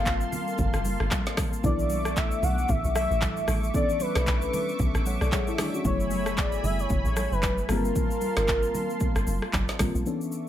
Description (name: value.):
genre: amapiano.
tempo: 114 BPM.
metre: 4/4.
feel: swing 58% on 16ths.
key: unclear.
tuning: A4 = 439 Hz.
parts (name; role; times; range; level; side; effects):
warm velvety synth lead; melody; 0.0-9.5 s; Bb4 to F#5; -30 LUFS; equal; chorus, tape echo.
mellow FM electric piano; accompaniment; 0.0-10.5 s; E3 to A5; -32 LUFS; left 3 dB; chorus.
lush unison pad; sustained chords; 0.0-10.5 s; A3 to D6; -35 LUFS; equal; chorus.
deep log drum bass; bass; 0.0-10.0 s; F#1 to B1; -28 LUFS; equal; none.
afro-pop drum kit; drums; 0.1-10.5 s; handclaps, hi-hat, kick drum, rim click, shaker, snare drum; -28 LUFS; equal; none.
congas; percussion; 0.3-9.9 s; none; -36 LUFS; right 3 dB; none.
room: digital ambience.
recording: none.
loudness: -24 LUFS.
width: side -11 dB against mid.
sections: 0.0-10.1 A section.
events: drop 0.0-10.1.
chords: 0.0 Gm11; 1.6 Bm11; 5.8 F#m11; 7.7 Gm11.